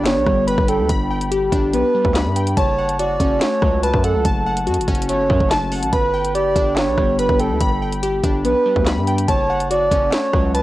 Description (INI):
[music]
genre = hip hop, drill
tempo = 143 BPM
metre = 4/4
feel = half-time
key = unclear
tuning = A4 = 436 Hz
[part]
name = breathy flute-like synth lead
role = second line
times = 0.0-10.6 s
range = A4 to D5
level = -20 LUFS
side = right 2 dB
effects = chorus, cassette tape, analog delay
[part]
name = glassy digital keys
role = arpeggios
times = 0.0-10.6 s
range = F#3 to B5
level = -21 LUFS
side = left 2 dB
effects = chorus, cassette tape, analog delay
[part]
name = distorted 808-style bass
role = bass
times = 0.0-10.6 s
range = F#1 to G2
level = -22 LUFS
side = equal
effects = distortion
[part]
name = drill drum kit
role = drums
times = 0.1-10.6 s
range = handclaps, hi-hat, kick drum, rim click, snare drum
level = -21 LUFS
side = equal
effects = none
[sound]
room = light reverb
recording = home recording on cassette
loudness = -15 LUFS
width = side -16 dB against mid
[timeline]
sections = 0.0-10.6 A section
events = none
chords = 0.0 G; 2.6 F#m; 5.9 G; 9.3 F#m